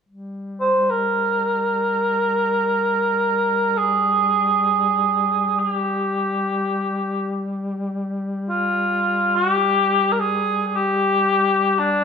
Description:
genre	caucasian folk, Caucasian lament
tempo	free time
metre	none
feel	none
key	G phrygian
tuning	A4 = 440 Hz
part	warm duduk	drone	0.1-12.0 s	G3	-26 LUFS	left 1 dB	none
part	mellow cor anglais	melody	0.6-12.0 s	D4 to C5	-18 LUFS	equal	none
room	moderate recital hall reverb, RT60 1.7 s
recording	minimal, uncompressed stereo recording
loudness	-18 LUFS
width	side -6 dB against mid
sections	0.1-12.0 A section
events	none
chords	none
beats	free time

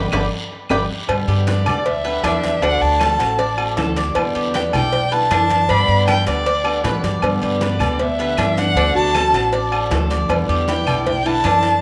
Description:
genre	latin, Cuban son and guajira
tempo	156 BPM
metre	4/4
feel	straight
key	G major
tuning	A4 = 440 Hz
part	picked old ladder-braced acoustic guitar	accompaniment	0.0-11.8 s	B2 to G4	-28 LUFS	equal	none
part	Cuban tres	arpeggios	0.0-11.8 s	D4 to G5	-26 LUFS	equal	tape echo
part	upright bass	bass	0.0-11.8 s	G1 to A2	-25 LUFS	equal	none
part	bongos and cowbell	percussion	0.1-11.8 s	none	-29 LUFS	equal	none
part	claves	percussion	0.1-11.6 s	none	-36 LUFS	equal	none
part	congas	percussion	0.1-11.6 s	none	-30 LUFS	equal	none
part	guiro	percussion	0.1-11.8 s	none	-36 LUFS	equal	none
part	timbales and agogo bells	percussion	0.1-11.6 s	none	-28 LUFS	equal	none
part	warm violin	melody	1.5-11.8 s	D5 to B5	-22 LUFS	equal	none
part	nylon-string guitar	second line	7.6-11.8 s	B3 to F#4	-28 LUFS	equal	none
room	moderate plate reverb, RT60 2.5 s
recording	none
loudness	-18 LUFS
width	mono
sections	0.0-1.1 A section; 1.1-11.8 B section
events	band accent 0.0-1.1; Cuban tres solo 0.0-1.1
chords	0.0 G; 2.6 D7; 4.2 Em7; 5.7 G; 8.8 D7; 10.3 Em7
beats	0.32 0.70 | 1.09 1.47 1.86 2.24 | 2.62 3.01 3.39 3.78 | 4.16 4.54 4.93 5.31 | 5.70 6.08 6.46 6.85 | 7.23 7.61 8.00 8.38 | 8.76 9.15 9.53 9.91 | 10.30 10.68 11.06 11.45

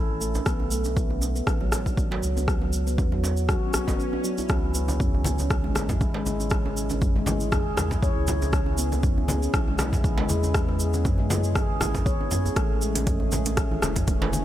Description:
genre	afro house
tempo	119 BPM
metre	4/4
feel	swing 55% on 16ths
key	C# minor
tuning	A4 = 440 Hz
part	handpan	arpeggios	0.0-14.3 s	E3 to C#5	-29 LUFS	equal	sidechain pumping, digital delay
part	warm sub bass	bass	0.0-14.4 s	E1 to F#2	-28 LUFS	equal	tube saturation, sidechain pumping
part	cabasa	percussion	0.2-14.4 s	none	-35 LUFS	right 3 dB	none
part	djembe	percussion	0.4-14.4 s	none	-35 LUFS	right 2 dB	none
part	afro-pop drum kit	drums	0.5-14.2 s	hi-hat, rim click, toms	-31 LUFS	equal	none
part	electronic kick drum	drums	0.5-14.2 s	none	-26 LUFS	equal	overdrive
part	swell	sound effects	3.6-4.5 s	none	-34 LUFS	right 2 dB	none
part	warm analog pad	sustained chords	4.5-14.4 s	C#3 to G#4	-34 LUFS	equal	chorus, sidechain pumping
part	congas	percussion	4.9-14.4 s	none	-32 LUFS	left 2 dB	none
room	small room ambience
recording	none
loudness	-22 LUFS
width	side -12 dB against mid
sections	0.0-14.4 A section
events	swell 3.6-4.5; break 4.0-4.5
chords	0.5 B7(no3); 4.5 C#m7; 12.6 Amaj7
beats	| 0.46 0.97 1.47 1.98 | 2.48 2.98 3.49 3.99 | 4.50 5.00 5.50 6.01 | 6.51 7.02 7.52 8.03 | 8.53 9.03 9.54 10.04 | 10.55 11.05 11.55 12.06 | 12.56 13.07 13.57 14.08

